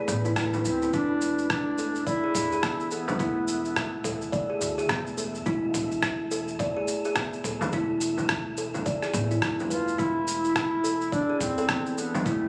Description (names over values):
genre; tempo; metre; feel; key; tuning
organic downtempo; 106 BPM; 4/4; swing 60% on 16ths; unclear; A4 = 439 Hz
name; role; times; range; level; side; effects
kalimba; arpeggios; 0.0-12.5 s; B3 to D5; -31 LUFS; equal; tape echo
wind-like tuned noise texture; texture; 0.0-12.5 s; A3 to E5; -42 LUFS; equal; built-in reverb
upright bass; bass; 0.1-12.5 s; E1 to E2; -38 LUFS; equal; sidechain pumping
dusty soul sampler-style drum kit; drums; 0.1-12.4 s; rim click, shaker, toms; -34 LUFS; equal; none
electronic kick drum; drums; 0.4-12.4 s; none; -38 LUFS; equal; overdrive
frame drum; percussion; 0.5-3.2, 7.6-12.2 s; none; -35 LUFS; equal; none
warm duduk; melody; 0.7-4.0, 9.7-12.5 s; A3 to F4; -31 LUFS; equal; digital delay
room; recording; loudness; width
light reverb, small room reverb; recorded on a phone in the room, studio ambience, compression; -27 LUFS; mono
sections
0.0-12.5 A section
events
none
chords
0.0 Esus4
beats
0.37 | 0.94 1.50 2.07 2.63 | 3.20 3.77 4.33 4.90 | 5.46 6.03 6.60 7.16 | 7.73 8.29 8.86 9.43 | 9.99 10.56 11.12 11.69 | 12.26